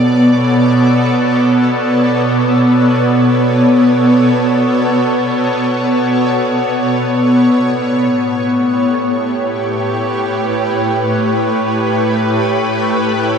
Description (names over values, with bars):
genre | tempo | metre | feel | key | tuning
ambient | free time | none | none | unclear | A4 = 440 Hz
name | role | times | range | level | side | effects
shimmering ambient pad | solo | 0.0-13.4 s | A2 to D5 | -11 LUFS | equal | chorus, built-in reverb
room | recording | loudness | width
wet huge ambient reverb, RT60 7.2 s | none | -11 LUFS | side -6 dB against mid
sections
0.0-7.2 A section; 7.2-13.4 B section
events
none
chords
0.0 Bm7; 7.2 A7